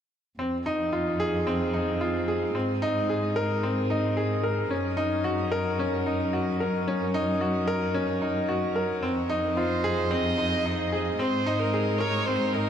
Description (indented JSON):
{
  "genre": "piano and strings electronica",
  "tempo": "111 BPM",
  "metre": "4/4",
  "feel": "straight",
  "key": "unclear",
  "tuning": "A4 = 440 Hz",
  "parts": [
    { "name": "bright grand piano", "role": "riff", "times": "0.4-12.7 s", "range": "C4 to Bb4", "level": "-26 LUFS", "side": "equal", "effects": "shimmer reverb, digital delay" },
    { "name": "dark studio cello section", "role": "bass", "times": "0.4-12.7 s", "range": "F2 to Ab2", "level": "-31 LUFS", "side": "equal", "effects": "none" },
    { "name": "warm violin", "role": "melody", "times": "9.6-12.7 s", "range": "Bb4 to Eb5", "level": "-28 LUFS", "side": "right 1 dB", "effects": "shimmer reverb" }
  ],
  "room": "moderate huge ambient reverb, RT60 8.1 s",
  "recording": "none",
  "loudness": "-24 LUFS",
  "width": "side -8 dB against mid",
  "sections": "0.4-12.7 A section",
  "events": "none",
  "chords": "0.4 Fm7; 2.5 Abadd9; 4.7 Ebm7/Gb; 9.0 Fm7; 11.2 Abadd9",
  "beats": "| 0.39 0.93 1.47 2.01 | 2.55 3.09 3.63 4.17 | 4.71 5.25 5.79 6.33 | 6.87 7.41 7.95 8.49 | 9.03 9.57 10.12 10.65 | 11.20 11.74 12.28"
}